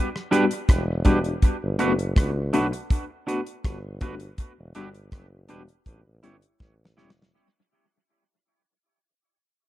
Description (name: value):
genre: lovers rock reggae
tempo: 81 BPM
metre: 4/4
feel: straight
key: unclear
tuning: A4 = 445 Hz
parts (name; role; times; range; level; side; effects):
- damped 70s drum kit; drums; 0.2-7.4 s; hi-hat, kick drum, rim click, snare drum; -21 LUFS; equal; none
- tine electric piano; accompaniment; 0.3-7.2 s; G3 to F#4; -27 LUFS; left 4 dB; medium tremolo, dub echo
- twangy electric guitar; stabs; 0.3-7.1 s; D4 to C#5; -28 LUFS; right 4 dB; dub echo
- warm tuba; bass; 0.7-7.3 s; E1 to C#2; -29 LUFS; equal; none
room: small room ambience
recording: dark, warm production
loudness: -21 LUFS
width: side -15 dB against mid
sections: 0.0-7.3 A section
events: fade-out 0.0-7.3; drum fill 6.6-7.3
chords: 0.0 Em7; 1.4 Gmaj7; 4.4 Em7; 5.9 A7